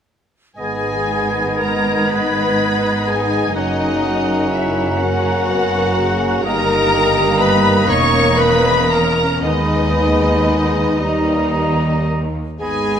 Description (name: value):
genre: classical, slow romantic movement for symphony orchestra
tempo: 36-43 BPM (dotted quarters)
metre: 6/8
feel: rubato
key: G# minor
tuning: A4 = 440 Hz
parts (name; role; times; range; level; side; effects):
- dark symphonic violin section; melody; 0.6-13.0 s; D#5 to C#6; -22 LUFS; left 3 dB; none
- bright clarinet; second line; 0.6-13.0 s; D#4 to C#5; -25 LUFS; left 1 dB; none
- clear oboe; second line; 0.6-13.0 s; D#5 to F#5; -26 LUFS; right 1 dB; none
- small flute group; second line; 0.6-13.0 s; A#5 to G#6; -25 LUFS; equal; none
- warm symphonic violin section; second line; 0.6-13.0 s; A#3 to F#4; -25 LUFS; left 3 dB; none
- mellow bassoon; accompaniment; 0.6-13.0 s; G3 to C#4; -24 LUFS; right 2 dB; none
- warm symphonic viola section; accompaniment; 0.6-13.0 s; D#4 to C#5; -24 LUFS; equal; none
- clear trombone section; sustained chords; 0.6-13.0 s; C#3 to B3; -25 LUFS; right 2 dB; none
- clear symphonic cello section; bass; 0.6-13.0 s; D#2 to G#2; -23 LUFS; right 1 dB; none
- warm symphonic double bass section; bass; 0.6-13.0 s; E1 to D#2; -24 LUFS; right 2 dB; none
- warm French horn section; sustained chords; 2.1-11.8 s; D#4 to B4; -23 LUFS; left 2 dB; none
room: moderate scoring stage reverb, RT60 1.8 s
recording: none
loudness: -14 LUFS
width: side -8 dB against mid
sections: 0.6-13.0 A section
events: none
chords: 0.6 G#m; 3.6 F#; 6.5 D#/G; 9.4 G#m/D#; 11.0 D#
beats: | 0.59 2.10 | 3.56 4.99 | 6.46 7.90 | 9.44 11.01 | 12.61